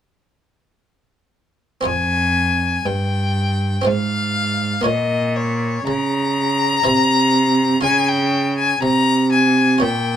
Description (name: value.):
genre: classical, baroque-style sonata movement with continuo.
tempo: 60 BPM.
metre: 3/4.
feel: straight.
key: F minor.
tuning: A4 = 441 Hz.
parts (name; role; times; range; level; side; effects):
buff-stop harpsichord; accompaniment; 1.8-10.2 s; F2 to F5; -22 LUFS; right 1 dB; none.
warm violin; melody; 1.9-10.2 s; Db5 to Bb5; -19 LUFS; left 4 dB; none.
rich cello; bass; 1.9-10.2 s; F2 to Db3; -18 LUFS; right 2 dB; none.
room: light reverb.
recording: minimal, uncompressed stereo recording.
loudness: -15 LUFS.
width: side -10 dB against mid.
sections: 1.9-10.2 A section.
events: none.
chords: 1.9 Fm; 3.9 Fm/Ab; 4.9 Bbm; 6.9 C; 7.8 Db.